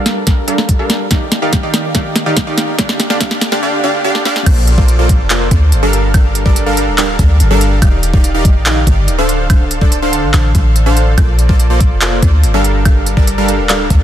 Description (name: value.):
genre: future bass.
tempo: 143 BPM.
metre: 4/4.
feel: half-time.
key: Bb major.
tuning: A4 = 442 Hz.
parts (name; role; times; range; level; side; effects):
supersaw stab; riff; 0.0-14.0 s; D3 to F5; -15 LUFS; right 1 dB; sidechain pumping, low-pass filter, ping-pong delay.
trap drum kit; drums; 0.1-14.0 s; crash cymbal, handclaps, hi-hat, snare drum, woodblock; -18 LUFS; equal; overdrive.
electronic kick drum; drums; 0.3-14.0 s; none; -12 LUFS; equal; overdrive.
warm 808-style bass; bass; 4.5-14.0 s; D1 to D2; -13 LUFS; equal; sidechain pumping.
room: digital ambience.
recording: dense, heavily limited modern master, high-pass filter.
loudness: -10 LUFS.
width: side -11 dB against mid.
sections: 0.0-4.5 A section; 4.5-14.0 B section.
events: build-up 0.0-4.5; drum fill 0.0-3.6, 4.1-4.5; filter sweep on supersaw synth 0.0-4.5; drop 4.5-14.0.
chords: 0.0 Gm7; 1.1 Ebmaj7; 2.6 Dm; 4.5 Bbmaj7; 5.9 Gm7; 7.8 Ebmaj7; 9.3 Dm7; 11.2 Bbmaj7; 12.6 Gm7.